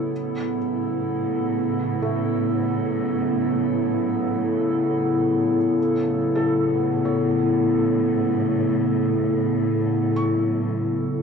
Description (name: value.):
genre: ambient.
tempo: free time.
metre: none.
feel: none.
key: A major.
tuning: A4 = 443 Hz.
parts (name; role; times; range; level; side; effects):
warbly tape-like pad; sustained chords; 0.0-11.2 s; C#3 to A4; -20 LUFS; equal; chorus, built-in reverb, cassette tape.
felt-muted upright piano; arpeggios; 0.0-11.2 s; A3 to E6; -37 LUFS; right 1 dB; cassette tape, analog delay.
dark studio cello section; bass; 0.0-11.2 s; A2; -29 LUFS; left 1 dB; none.
room: wet small room reverb, RT60 0.5 s.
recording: home recording on cassette.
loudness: -20 LUFS.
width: side -6 dB against mid.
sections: 0.0-11.2 A section.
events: fade-in on cello section 0.0-11.2; fade-out on felt piano 0.0-11.2.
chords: 0.0 A.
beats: free time.